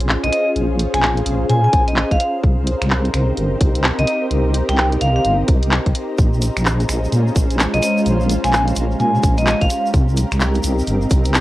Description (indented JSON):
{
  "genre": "UK garage, two-step garage",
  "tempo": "128 BPM",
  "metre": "4/4",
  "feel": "swing 63% on 16ths",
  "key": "Bb dorian",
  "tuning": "A4 = 440 Hz",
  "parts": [
    { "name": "soft string machine", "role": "sustained chords", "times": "0.0-11.4 s", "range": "C4 to C5", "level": "-25 LUFS", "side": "equal", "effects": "ensemble chorus, sidechain pumping, cassette tape" },
    { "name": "deep soft wobble bass", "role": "bass", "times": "0.0-11.4 s", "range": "G1 to Bb2", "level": "-18 LUFS", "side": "equal", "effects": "chorus" },
    { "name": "garage drum kit", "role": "drums", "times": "0.0-11.4 s", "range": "finger snaps, handclaps, hi-hat", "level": "-21 LUFS", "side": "equal", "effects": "cassette tape" },
    { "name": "ethereal airy pad", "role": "texture", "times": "0.0-11.4 s", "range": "Ab3 to Bb5", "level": "-25 LUFS", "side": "equal", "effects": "ensemble chorus, built-in reverb, sidechain pumping, cassette tape" },
    { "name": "vibraphone with hard mallets", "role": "melody", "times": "0.2-9.8 s", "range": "Eb5 to Ab5", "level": "-20 LUFS", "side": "equal", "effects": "cassette tape" },
    { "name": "electronic kick drum", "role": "drums", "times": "1.7-11.2 s", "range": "none", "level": "-16 LUFS", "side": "equal", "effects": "cassette tape" },
    { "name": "tube shaker", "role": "percussion", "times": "6.2-11.4 s", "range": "none", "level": "-33 LUFS", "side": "right 1 dB", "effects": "none" }
  ],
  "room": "light reverb",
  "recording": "home recording on cassette",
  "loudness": "-15 LUFS",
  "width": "side -16 dB against mid",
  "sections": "0.0-11.4 A section",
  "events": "none",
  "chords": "0.0 Bbm7; 2.4 Cm7; 6.2 Bbm7; 9.9 Cm7",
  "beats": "0.09 | 0.56 1.03 1.50 1.97 | 2.44 2.90 3.37 3.84 | 4.31 4.78 5.25 5.72 | 6.18 6.65 7.12 7.59 | 8.06 8.53 9.00 9.47 | 9.94 10.40 10.87 11.34"
}